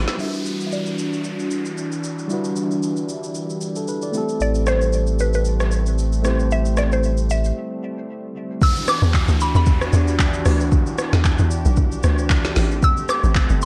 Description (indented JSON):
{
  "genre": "amapiano",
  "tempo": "114 BPM",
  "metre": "4/4",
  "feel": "swing 55% on 16ths",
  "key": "E minor",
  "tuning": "A4 = 435 Hz",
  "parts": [
    { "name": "warm analog pad", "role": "sustained chords", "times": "0.0-13.7 s", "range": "E3 to G4", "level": "-30 LUFS", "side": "equal", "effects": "subtle chorus, sidechain pumping, low-pass filter" },
    { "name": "tight log drum bass", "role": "bass", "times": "0.0-0.1, 9.0-13.7 s", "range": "G1 to E2", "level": "-20 LUFS", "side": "equal", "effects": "none" },
    { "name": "smooth R&B drum kit", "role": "drums", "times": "0.1-13.7 s", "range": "handclaps, hi-hat, kick drum, rim click, shaker, snare drum", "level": "-24 LUFS", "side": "equal", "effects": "vintage 12-bit sampler grit" },
    { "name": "mallet-like synth pluck", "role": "melody", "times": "0.2-13.7 s", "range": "B4 to E6", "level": "-27 LUFS", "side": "equal", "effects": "chorus, low-pass filter, delay" },
    { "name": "tine electric piano", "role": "accompaniment", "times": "0.2-8.6 s", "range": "G3 to D5", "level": "-28 LUFS", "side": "equal", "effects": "low-pass filter" },
    { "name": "downlifter", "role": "sound effects", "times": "0.2-4.4, 8.6-12.8 s", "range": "none", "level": "-36 LUFS", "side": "equal", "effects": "none" },
    { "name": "warm sub bass", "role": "bass", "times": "4.4-7.5 s", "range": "A1", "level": "-22 LUFS", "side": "equal", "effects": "none" }
  ],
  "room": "light reverb",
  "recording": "dark, warm production",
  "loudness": "-20 LUFS",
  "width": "mono",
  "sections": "0.2-8.6 A section; 8.6-13.7 B section",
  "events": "drum fill 0.0; filter sweep 0.2-8.6; break 7.6-8.6; drop 8.6-13.7",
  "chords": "0.2 Em9; 4.1 Am7; 8.6 Em9; 12.6 Am7"
}